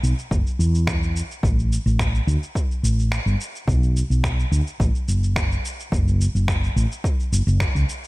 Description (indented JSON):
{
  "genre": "sunset chillout",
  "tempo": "107 BPM",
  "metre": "4/4",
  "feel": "straight",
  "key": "B minor",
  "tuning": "A4 = 444 Hz",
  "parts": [
    { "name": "woody fretless electric bass", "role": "bass", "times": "0.0-7.8 s", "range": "F#1 to E2", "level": "-19 LUFS", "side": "equal", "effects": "none" },
    { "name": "electronic cabasa and finger snaps", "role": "drums", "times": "0.0-8.1 s", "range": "none", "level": "-30 LUFS", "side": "equal", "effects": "overdrive, analog delay" },
    { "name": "electronic kick drum", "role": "drums", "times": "0.3-7.7 s", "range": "none", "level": "-24 LUFS", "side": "equal", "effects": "overdrive" }
  ],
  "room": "digital ambience",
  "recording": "echo-heavy mix",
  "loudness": "-19 LUFS",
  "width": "side -21 dB against mid",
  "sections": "0.0-8.1 A section",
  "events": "break 3.1-3.7",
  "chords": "none",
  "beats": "0.31 0.87 | 1.44 2.00 2.56 3.12 | 3.68 4.24 4.80 5.36 | 5.92 6.48 7.04 7.60"
}